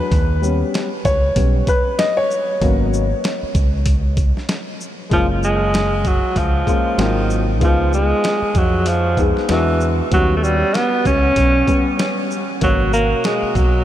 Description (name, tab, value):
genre	hip hop, jazz-hop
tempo	96 BPM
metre	4/4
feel	swing 59% on 16ths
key	F# major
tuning	A4 = 439 Hz
part	dark upright piano	accompaniment	0.0-13.6 s	B2 to D#5	-21 LUFS	left 3 dB	none
part	deep dub fingered electric bass	bass	0.1-13.8 s	F#1 to E#2	-19 LUFS	equal	none
part	boom bap sampler-style drum kit	drums	0.1-13.7 s	hi-hat, kick drum, shaker, snare drum	-20 LUFS	equal	none
part	breathy alto saxophone	melody	5.1-13.8 s	D#3 to C#4	-18 LUFS	right 1 dB	analog delay
room	moderate huge ambient reverb, RT60 6.2 s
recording	dreamy mix soaked in reverb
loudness	-15 LUFS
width	side -12 dB against mid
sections	0.0-5.1 A section; 5.1-13.8 B section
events	upright piano solo 0.0-5.1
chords	0.1 D#aug7; 2.6 G#m11; 5.1 F#maj9; 7.0 G#13; 7.6 C#7; 9.5 E9; 10.1 D#7alt; 12.6 G#m11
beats	| 0.11 0.74 1.36 1.99 | 2.61 3.24 3.86 4.49 | 5.11 5.74 6.36 6.99 | 7.61 8.24 8.86 9.49 | 10.11 10.74 11.36 11.99 | 12.61 13.24